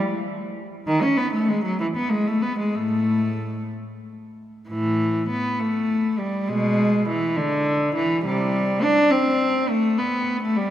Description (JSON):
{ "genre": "classical, baroque-style suite movement for unaccompanied cello", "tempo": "60-69 BPM (dotted quarters)", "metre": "6/8", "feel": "rubato", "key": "A minor", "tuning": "A4 = 441 Hz", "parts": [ { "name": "rich cello", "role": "solo", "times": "0.9-10.7 s", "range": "A2 to D4", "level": "-20 LUFS", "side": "equal", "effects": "none" } ], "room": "wet church reverb, RT60 3.4 s", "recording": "none", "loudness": "-20 LUFS", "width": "side -11 dB against mid", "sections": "0.0-4.7 A section; 4.7-10.7 B section", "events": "none", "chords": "none" }